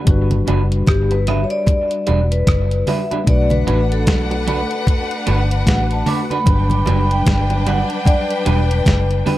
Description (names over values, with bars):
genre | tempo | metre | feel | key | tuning
lovers rock reggae | 75 BPM | 4/4 | swing 60% on 16ths | G major | A4 = 442 Hz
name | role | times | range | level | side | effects
tine electric piano | accompaniment | 0.0-9.4 s | F#3 to B4 | -25 LUFS | left 3 dB | medium tremolo
vintage muted fingered electric bass | bass | 0.1-9.2 s | E1 to B1 | -17 LUFS | equal | none
clean 12-bit digital drum machine | drums | 0.1-9.4 s | hi-hat, kick drum, rim click, snare drum | -17 LUFS | equal | none
congas | percussion | 0.1-9.4 s | none | -26 LUFS | right 2 dB | none
electric guitar through a small old amp | stabs | 0.5-9.4 s | G3 to B4 | -25 LUFS | right 5 dB | dub echo
vibraphone with medium hard mallets | melody | 0.9-9.4 s | G4 to D6 | -22 LUFS | left 1 dB | tape echo
warm studio violin section | second line | 3.3-9.4 s | D4 to G5 | -25 LUFS | left 2 dB | dub echo
room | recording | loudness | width
digital ambience | dark, warm production | -14 LUFS | side -15 dB against mid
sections
0.0-9.4 A section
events
vibraphone solo 0.0-9.4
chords
0.1 Gmaj7; 3.3 Bm7; 6.5 Gmaj7